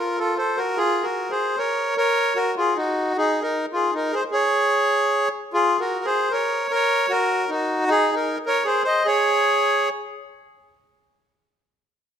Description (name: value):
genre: musette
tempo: 126-155 BPM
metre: 3/4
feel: straight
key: unclear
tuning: A4 = 441 Hz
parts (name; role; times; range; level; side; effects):
- accordion; solo; 0.0-9.9 s; Eb4 to Eb5; -19 LUFS; equal; none
room: moderate recital hall reverb, RT60 1.7 s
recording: none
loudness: -19 LUFS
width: side -8 dB against mid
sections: 0.0-5.5 A section; 5.5-10.4 B section; 10.4-12.2 C section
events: slowing down 7.9-10.4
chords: 0.0 F; 0.8 Bbm; 2.0 Ebm; 3.1 N.C.; 3.5 Ab5; 4.3 N.C.; 5.5 Bbm; 6.7 Ebm; 7.9 N.C.; 8.2 Ab; 9.0 N.C.